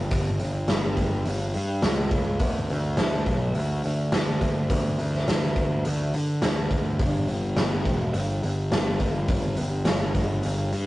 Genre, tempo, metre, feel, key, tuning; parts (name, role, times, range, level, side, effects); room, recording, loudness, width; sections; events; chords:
quiet-loud alternative rock; 105 BPM; 4/4; straight; A4 = 440 Hz
fuzz picked electric bass; bass; 0.0-10.9 s; E1 to D3; -26 LUFS; equal; overdrive
raw garage drum kit; drums; 0.1-10.9 s; hi-hat, kick drum, snare drum; -26 LUFS; equal
light reverb; rough rehearsal-room recording, warm saturation, nothing above 10.4 kHz; -22 LUFS; side -17 dB against mid
0.0-10.9 A section